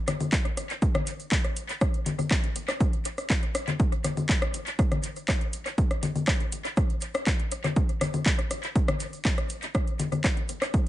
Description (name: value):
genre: techno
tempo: 121 BPM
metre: 4/4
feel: straight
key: none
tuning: none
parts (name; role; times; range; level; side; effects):
- house drum kit; drums; 0.1-10.8 s; congas, handclaps, hi-hat, rim click; -29 LUFS; left 2 dB; overdrive, tape echo
- egg shaker; percussion; 0.1-10.8 s; none; -45 LUFS; right 4 dB; tape echo
- electronic kick drum; drums; 0.3-10.8 s; none; -25 LUFS; equal; overdrive
room: little or no reverb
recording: echo-heavy mix, nothing above 10.3 kHz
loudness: -24 LUFS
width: side -14 dB against mid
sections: 0.0-10.9 A section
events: none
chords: none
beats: 0.33 0.82 1.32 | 1.81 2.31 2.80 3.30 | 3.80 4.29 4.79 5.28 | 5.78 6.28 6.77 7.27 | 7.76 8.26 8.76 9.25 | 9.75 10.24 10.74